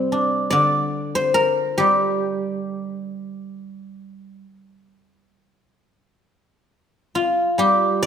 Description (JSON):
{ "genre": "chinese traditional, Chinese solo plucked strings", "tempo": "64-72 BPM", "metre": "4/4", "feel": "rubato", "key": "G yu mode", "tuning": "A4 = 440 Hz", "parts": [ { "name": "guzheng", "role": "solo", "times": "0.0-8.1 s", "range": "C3 to D5", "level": "-19 LUFS", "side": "equal", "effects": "none" } ], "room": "moderate concert hall reverb, RT60 2.1 s", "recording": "minimal, uncompressed stereo recording", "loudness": "-18 LUFS", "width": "side -8 dB against mid", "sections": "0.0-5.8 A section; 5.8-8.1 B section", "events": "none", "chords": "none" }